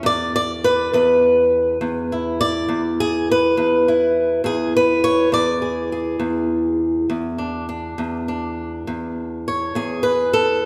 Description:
acoustic country blues, solo or duo; 68 BPM (dotted quarters); 12/8; straight; E mixolydian; A4 = 440 Hz
fingerpicked swing-style acoustic guitar; solo; 0.0-10.7 s; E2 to D5; -20 LUFS; equal
moderate concert hall reverb, RT60 1.6 s; recorded in a church or concert hall; -20 LUFS; mono
0.0-10.7 A section
0.0 E7

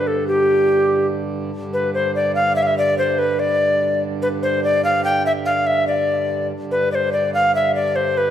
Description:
medieval dance; 96 BPM (dotted quarters); 6/8; straight; G mixolydian; A4 = 440 Hz
tenor recorder; melody; 0.0-8.3 s; G4 to G5; -17 LUFS; left 1 dB
pedal harmonium; drone; 0.0-8.3 s; G2 to D3; -25 LUFS; right 3 dB
wet scoring stage reverb, RT60 1.7 s; recorded in a church or concert hall; -16 LUFS; side -10 dB against mid
0.0-1.5 A section; 1.5-8.3 B section

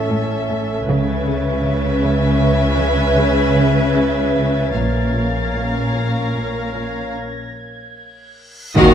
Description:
cinematic, suspense film score; 76 BPM; 5/4; straight; A4 = 440 Hz
rich chamber violin section; melody; 0.0-8.9 s; E5 to E#5; -25 LUFS; left 2 dB
rich symphonic viola section; accompaniment; 0.0-8.9 s; C#4 to B4; -22 LUFS; right 1 dB
glass harmonica; sustained chords; 0.0-8.9 s; Eb4 to Bb5; -26 LUFS; left 2 dB
rich symphonic cello section; bass; 0.0-8.9 s; Eb2 to C#3; -22 LUFS; right 1 dB
rich symphonic double bass section; bass; 0.0-8.9 s; A1 to Eb2; -21 LUFS; right 1 dB
dark grand piano; texture; 0.0-8.8 s; G#4 to A5; -34 LUFS; left 6 dB
rich symphonic cello section; riff; 0.1-8.9 s; A2 to Eb3; -24 LUFS; right 1 dB
rich studio violin section; texture; 0.9-8.9 s; Eb6 to A6; -30 LUFS; equal
reverse cymbal and impact; sound effects; 8.7-8.9 s; -20 LUFS; left 1 dB
clear symphonic violin section; second line; 8.8-8.9 s; Eb5 to Gb5; -20 LUFS; equal
dark French horn section; sustained chords; 8.8-8.9 s; Bb2 to Gb4; -17 LUFS; left 4 dB
timpani; percussion; 8.8-8.9 s; barely audible
moderate scoring stage reverb, RT60 1.8 s; dark, warm production; -15 LUFS; side -9 dB against mid
0.0-8.8 A section
break 7.2-8.8; reverse cymbal 8.7; band accent 8.8; impact 8.8
0.0 A; 0.9 C#m7; 4.7 A#m

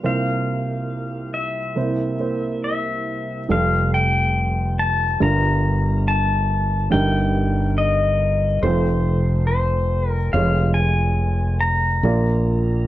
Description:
acoustic folk-pop ballad; 70 BPM; 4/4; straight; F major; A4 = 435 Hz
pedal steel guitar; melody; 0.0-12.9 s; C5 to Bb5; -23 LUFS; left 3 dB
warm upright piano; accompaniment; 0.0-12.9 s; F1 to D5; -23 LUFS; right 3 dB
fretless electric bass; bass; 3.5-12.9 s; F1 to Bb1; -20 LUFS; equal
little or no reverb; dry, close 1970s-style studio recording, faint mains hum; -18 LUFS; side -14 dB against mid
0.0-3.5 A section; 3.5-12.9 B section
0.0 C7sus4; 1.8 C7; 3.5 Fadd9; 5.2 Gm7; 6.9 Eb/G; 8.6 F; 10.3 Db/F; 12.0 Bb

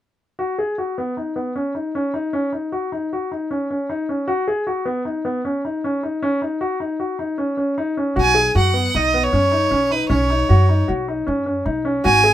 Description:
contemporary instrumental, chamber music in an uneven meter; 154 BPM; 5/4; straight; B major; A4 = 444 Hz
warm baby grand piano; arpeggios; 0.4-12.3 s; B3 to G#4; -21 LUFS; left 1 dB
clear violin; melody; 8.2-12.3 s; B4 to G#5; -17 LUFS; right 2 dB
upright bass; bass; 8.2-12.3 s; G#1 to F#2; -19 LUFS; equal
moderate booth ambience, RT60 0.3 s; minimal, uncompressed stereo recording; -18 LUFS; side -12 dB against mid
0.4-8.2 A section; 8.2-12.3 B section
0.4 Badd9 (rootless); 8.2 Badd9

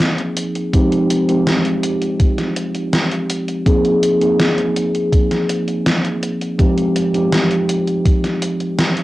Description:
vaporwave; 82 BPM; 4/4; straight; A4 = 440 Hz
mellow tine electric piano; accompaniment; 0.0-9.0 s; F3 to Ab4; -16 LUFS; equal; slow stereo tremolo, lush chorus, cassette tape, analog delay
gated 80s digital drum machine; drums; 0.0-9.0 s; hi-hat, snare drum; -20 LUFS; equal; gated reverb, gated reverb snare, vintage 12-bit sampler grit
electronic kick drum; drums; 0.7-8.2 s; -14 LUFS; equal; vintage 12-bit sampler grit
moderate studio reverb, RT60 0.6 s; home recording on cassette; -14 LUFS; side -17 dB against mid
0.0-9.0 A section
0.0 Bb9sus4; 0.7 Fm9; 3.7 Bb9sus4; 6.6 Fm9

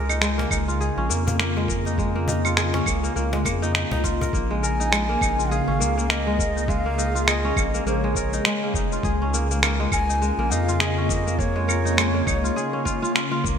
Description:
organic downtempo; 102 BPM; 4/4; swing 58% on 16ths; Bb minor pentatonic; A4 = 439 Hz
ethereal airy pad; sustained chords; 0.0-13.6 s; Db3 to Ab4; -28 LUFS; left 1 dB; ensemble chorus, built-in reverb, sidechain pumping
kora; arpeggios; 0.0-13.6 s; Ab3 to Bb4; -27 LUFS; equal; ping-pong delay, shimmer reverb
round analog bass; bass; 0.0-13.6 s; F1 to F2; -25 LUFS; equal; sidechain pumping
electronic claves, cabasa and finger snaps; drums; 0.1-13.6 s; -25 LUFS; equal; gated reverb
cajon; percussion; 0.4-4.3 s; -34 LUFS; left 2 dB
electronic kick drum; drums; 0.5-13.6 s; -27 LUFS; equal
breathy bansuri; melody; 4.6-13.2 s; Db5 to Ab5; -28 LUFS; equal; ping-pong delay, shimmer reverb
moderate lush hall reverb, RT60 2.2 s; bright 1980s-style digital production; -20 LUFS; side -7 dB against mid
0.0-4.3 A section; 4.3-13.6 B section
0.0 Db6; 4.3 Bbm7; 9.0 Db6

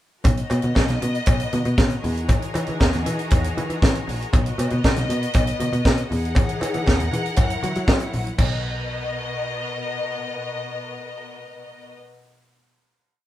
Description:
disco; 118 BPM; 4/4; straight; B major; A4 = 439 Hz
clear studio string section; sustained chords; 0.2-11.9 s; B2 to F#5; -28 LUFS; left 2 dB
tight funk drum kit; drums; 0.2-8.5 s; crash cymbal, hi-hat, kick drum, snare drum; -20 LUFS; equal
congas; percussion; 0.2-8.6 s; -32 LUFS; left 1 dB
cowbell; percussion; 0.2-8.6 s; -32 LUFS; left 1 dB
picked electric bass; bass; 0.3-11.9 s; A#1 to F#3; -25 LUFS; equal
light reverb; band playing live in one room; -19 LUFS; side -13 dB against mid
0.2-8.4 verse; 8.4-12.4 final chord
0.2 Bmaj7; 2.0 Emaj9#11; 4.3 Bmaj7; 6.1 Emaj9#11; 7.4 F#7; 8.4 Bmaj7

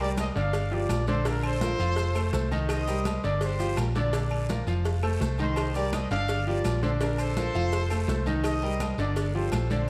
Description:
latin, salsa; 167 BPM; 4/4; straight; A4 = 440 Hz
mellow trumpet section; melody; 0.0-9.9 s; F4 to F5; -35 LUFS; equal
bright concert grand piano; accompaniment; 0.0-9.9 s; D3 to F5; -33 LUFS; equal
hollow-body short-scale fingered electric bass; bass; 0.0-9.9 s; F1 to C2; -31 LUFS; equal
congas; percussion; 0.0-9.9 s; -39 LUFS; equal
claves; percussion; 0.2-9.7 s; -52 LUFS; equal
cowbell; percussion; 0.2-9.7 s; -40 LUFS; equal
guiro; percussion; 0.2-9.9 s; -50 LUFS; equal
maracas; percussion; 0.2-9.9 s; -50 LUFS; equal
timbales and agogo bells; percussion; 0.2-9.7 s; -43 LUFS; equal
moderate large studio reverb, RT60 1.4 s; -27 LUFS; mono
0.0-9.9 A section
0.0 C5; 0.5 Gm7; 1.3 Bb; 2.0 F7; 2.7 Cm7; 3.4 Gm7; 4.1 Bb; 4.9 F7; 5.6 Cm7; 6.3 Gm7; 7.0 Bb; 7.7 F7; 8.4 Cm7; 9.2 Gm7

